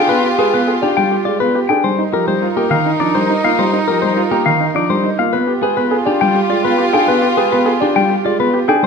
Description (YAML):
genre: classical, minimalist pattern music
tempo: 103 BPM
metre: 3/4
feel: straight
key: unclear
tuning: A4 = 441 Hz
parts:
  - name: clean electric guitar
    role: melody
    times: 0.0-8.9 s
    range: G4 to G5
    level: -17 LUFS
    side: left 9 dB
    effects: none
  - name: warm soprano saxophone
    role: second line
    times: 0.0-8.9 s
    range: Eb4 to F4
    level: -22 LUFS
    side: right 5 dB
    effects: none
  - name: dark baby grand piano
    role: accompaniment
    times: 0.0-8.9 s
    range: Eb3 to D4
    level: -18 LUFS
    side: equal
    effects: none
  - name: warm symphonic string section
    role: sustained chords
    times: 0.0-8.9 s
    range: Eb4 to Bb4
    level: -23 LUFS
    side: left 3 dB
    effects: none
  - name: warm baby grand piano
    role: arpeggios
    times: 0.0-8.9 s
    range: D4 to D5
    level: -19 LUFS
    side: right 9 dB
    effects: none
room: moderate scoring stage reverb, RT60 1.8 s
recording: close, detailed microphones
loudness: -12 LUFS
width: side -5 dB against mid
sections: 0.0-8.9 A section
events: none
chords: 0.0 G7b9; 1.8 Cm7; 5.3 G7b9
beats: | 0.09 0.68 1.26 | 1.84 2.42 3.00 | 3.59 4.17 4.75 | 5.33 5.92 6.50 | 7.08 7.67 8.25 | 8.83